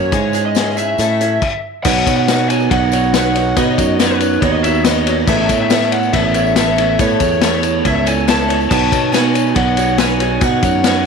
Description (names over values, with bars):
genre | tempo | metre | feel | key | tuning
folk rock and heartland rock | 140 BPM | 4/4 | straight | unclear | A4 = 440 Hz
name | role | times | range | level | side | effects
lead guitar through a small cranked amp | melody | 0.0-11.1 s | B4 to A5 | -19 LUFS | equal | overdrive, tape echo
picked twelve-string acoustic guitar | accompaniment | 0.0-11.1 s | G#2 to C#5 | -21 LUFS | left 12 dB | none
electric guitar through a small old amp | riff | 0.0-11.1 s | A2 to C#5 | -19 LUFS | right 15 dB | none
fingered electric bass | bass | 0.0-11.1 s | A1 to B2 | -19 LUFS | right 1 dB | none
vintage drum kit | drums | 0.1-10.9 s | crash cymbal, hi-hat, kick drum, ride cymbal, snare drum | -18 LUFS | left 6 dB | none
tambourine | percussion | 0.1-10.9 s | none | -32 LUFS | right 17 dB | none
dark grand piano | accompaniment | 1.8-11.1 s | D#4 to F#5 | -28 LUFS | right 12 dB | none
room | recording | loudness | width
light reverb, studio reverb | 1960s-style stereo with parts hard left and right | -12 LUFS | side -5 dB against mid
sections
0.0-1.8 A section; 1.8-11.1 B section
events
stop 1.4-1.8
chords
0.1 C#m/G#; 1.0 A; 1.8 Badd9; 5.3 Aadd9; 8.7 Badd9